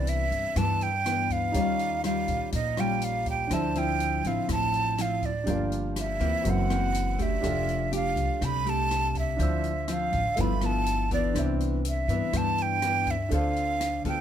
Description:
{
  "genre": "bossa nova",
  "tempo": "122 BPM",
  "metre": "4/4",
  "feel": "straight",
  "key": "C major",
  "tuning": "A4 = 440 Hz",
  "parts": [
    { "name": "breathy jazz flute", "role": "melody", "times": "0.0-14.2 s", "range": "D5 to B5", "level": "-28 LUFS", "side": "right 2 dB", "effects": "none" },
    { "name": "nylon-string guitar", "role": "accompaniment", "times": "0.0-14.2 s", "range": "F#2 to A4", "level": "-31 LUFS", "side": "left 2 dB", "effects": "none" },
    { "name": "warm grand piano", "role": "accompaniment", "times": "0.0-14.2 s", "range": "C4 to E6", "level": "-36 LUFS", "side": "right 3 dB", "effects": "none" },
    { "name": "upright bass", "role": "bass", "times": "0.0-14.2 s", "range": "F1 to G2", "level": "-30 LUFS", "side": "equal", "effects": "none" },
    { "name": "open jazz drum kit", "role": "drums", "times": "0.1-14.2 s", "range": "hi-hat, kick drum, rim click", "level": "-36 LUFS", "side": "equal", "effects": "none" }
  ],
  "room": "little or no reverb",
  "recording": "close, detailed microphones",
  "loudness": "-24 LUFS",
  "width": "side -9 dB against mid",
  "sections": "0.0-14.2 A section",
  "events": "none",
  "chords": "0.0 Cmaj9; 1.5 Eb9; 3.5 Dm9; 5.5 Gm7; 6.5 F#7#11; 7.4 F69; 9.4 Dm9; 10.4 G13; 11.4 Cmaj9; 13.3 Dm7"
}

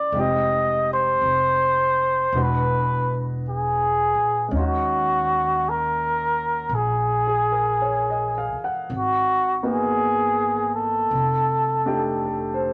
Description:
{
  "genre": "jazz ballad",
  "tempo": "55 BPM",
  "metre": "4/4",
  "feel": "swing 66% on 8ths",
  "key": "unclear",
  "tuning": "A4 = 442 Hz",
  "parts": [
    { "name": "trumpet with cup mute", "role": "melody", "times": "0.0-12.7 s", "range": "F#4 to Eb5", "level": "-23 LUFS", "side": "equal", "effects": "none" },
    { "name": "warm concert grand piano", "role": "accompaniment", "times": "0.0-12.7 s", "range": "C#3 to F#5", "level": "-31 LUFS", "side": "equal", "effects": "none" },
    { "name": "upright bass", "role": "bass", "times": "0.1-12.7 s", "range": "E1 to A#2", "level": "-31 LUFS", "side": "equal", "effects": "none" }
  ],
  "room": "moderate studio reverb, RT60 0.7 s",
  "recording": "none",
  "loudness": "-22 LUFS",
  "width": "mono",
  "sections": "0.0-12.7 A section",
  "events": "none",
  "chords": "0.1 Fm7; 2.3 E9; 4.5 D#m7; 8.9 G#m9; 11.1 F13"
}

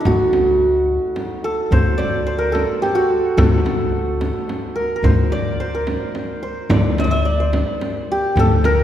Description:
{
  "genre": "Persian modal ensemble",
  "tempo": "108 BPM",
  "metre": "3/4",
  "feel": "straight",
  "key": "D dastgah homayun",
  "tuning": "A4 = 440 Hz",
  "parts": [
    { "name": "santur", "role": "melody", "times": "0.0-8.8 s", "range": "Eb4+45c to Eb5+45c", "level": "-19 LUFS", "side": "right 1 dB", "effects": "none" },
    { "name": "upright bass", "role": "bass", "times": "0.1-8.8 s", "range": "D2", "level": "-20 LUFS", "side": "left 1 dB", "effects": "none" },
    { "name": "frame drum", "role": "percussion", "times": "0.1-8.8 s", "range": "none", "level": "-21 LUFS", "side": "equal", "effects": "none" }
  ],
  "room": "wet concert hall reverb, RT60 2.0 s",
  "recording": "recorded in a church or concert hall",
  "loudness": "-16 LUFS",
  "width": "side -11 dB against mid",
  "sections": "0.0-8.8 A section",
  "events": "none",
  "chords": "none"
}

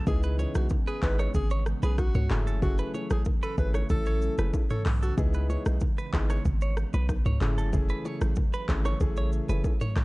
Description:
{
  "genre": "afrobeats",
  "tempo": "94 BPM",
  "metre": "4/4",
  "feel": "straight",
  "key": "unclear",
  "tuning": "A4 = 441 Hz",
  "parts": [
    { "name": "hollow soft pad", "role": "sustained chords", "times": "0.0-10.0 s", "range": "C#3 to C#4", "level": "-38 LUFS", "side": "right 1 dB", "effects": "chorus" },
    { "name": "direct-recorded clean electric guitar", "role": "riff", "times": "0.0-9.9 s", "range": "A4 to C#5", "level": "-39 LUFS", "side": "right 4 dB", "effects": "phaser, slapback echo" },
    { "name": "breathy alto saxophone", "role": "melody", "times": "0.1-5.2 s", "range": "F#4 to B4", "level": "-36 LUFS", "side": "equal", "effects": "slapback echo" },
    { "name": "dark grand piano", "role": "accompaniment", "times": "0.1-9.7 s", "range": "A3 to A4", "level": "-36 LUFS", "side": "left 2 dB", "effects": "none" },
    { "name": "warm 808-style bass", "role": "bass", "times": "0.1-10.0 s", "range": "F#1 to C#2", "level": "-27 LUFS", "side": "equal", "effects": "none" },
    { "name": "afro-pop drum kit", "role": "drums", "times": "0.1-10.0 s", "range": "handclaps, hi-hat, kick drum, rim click, shaker, toms", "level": "-29 LUFS", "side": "equal", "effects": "overdrive, vintage 12-bit sampler grit" },
    { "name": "congas and bongos", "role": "percussion", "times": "0.1-10.0 s", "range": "none", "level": "-37 LUFS", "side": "left 1 dB", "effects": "none" }
  ],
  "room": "digital ambience",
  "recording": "dark, warm production",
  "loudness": "-24 LUFS",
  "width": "side -22 dB against mid",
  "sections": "0.0-10.0 A section",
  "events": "none",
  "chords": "0.1 C#m7; 2.3 F#m7; 5.2 C#m7; 7.4 F#m7"
}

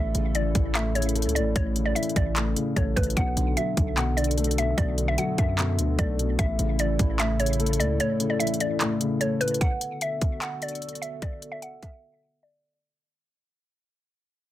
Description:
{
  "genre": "hip hop, trap",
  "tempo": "149 BPM",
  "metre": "4/4",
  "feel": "half-time",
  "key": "B minor",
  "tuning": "A4 = 441 Hz",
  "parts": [
    { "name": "mallet-like synth pluck", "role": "melody", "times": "0.0-12.8 s", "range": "B4 to F#5", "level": "-30 LUFS", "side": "equal", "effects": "chorus, low-pass filter, digital delay" },
    { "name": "dark concert grand piano", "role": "accompaniment", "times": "0.0-9.6 s", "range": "A2 to A3", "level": "-28 LUFS", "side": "left 3 dB", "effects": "none" },
    { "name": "dark analog pad", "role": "sustained chords", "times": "0.0-12.8 s", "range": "C#3 to A4", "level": "-35 LUFS", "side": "equal", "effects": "lush chorus, low-pass filter" },
    { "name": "hard-hitting 808-style bass", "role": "bass", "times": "0.0-8.0 s", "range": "A1 to F#2", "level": "-26 LUFS", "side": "equal", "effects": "none" },
    { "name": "trap drum kit", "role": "drums", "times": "0.1-11.9 s", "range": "handclaps, hi-hat, kick drum", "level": "-27 LUFS", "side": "equal", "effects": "none" }
  ],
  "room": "light reverb",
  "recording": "dense, heavily limited modern master",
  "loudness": "-23 LUFS",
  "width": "side -13 dB against mid",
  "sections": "0.0-9.6 A section; 9.6-12.8 B section",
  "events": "kick muted 8.0-9.6; fade-out 9.6-12.8; filter sweep 9.6-12.8; break 12.0-12.8",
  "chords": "0.0 A; 3.2 Bm7; 6.4 A; 9.6 Bm7"
}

